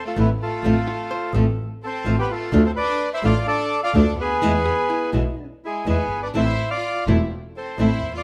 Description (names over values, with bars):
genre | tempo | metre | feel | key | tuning
tango | 126 BPM | 4/4 | rubato | A minor | A4 = 440 Hz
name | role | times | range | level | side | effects
bandoneon | melody | 0.0-8.2 s | E4 to F5 | -26 LUFS | equal | none
clear studio violin section | second line | 0.0-8.2 s | G#3 to F4 | -36 LUFS | equal | none
flamenco guitar | accompaniment | 0.2-7.9 s | B2 to F4 | -24 LUFS | equal | none
rich double bass | bass | 0.2-8.2 s | E1 to E2 | -25 LUFS | equal | none
vintage hollow-body jazz guitar | second line | 0.9-1.7, 4.7-5.5 s | E4 to C5 | -34 LUFS | equal | none
dark studio string section | stabs | 6.3-8.0 s | A3 to E4 | -31 LUFS | equal | none
room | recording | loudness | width
moderate large studio reverb, RT60 1.1 s | none | -21 LUFS | mono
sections
0.0-8.2 A section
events
none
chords
0.0 Am; 0.6 F/A; 2.5 Dm; 4.4 E; 6.3 Am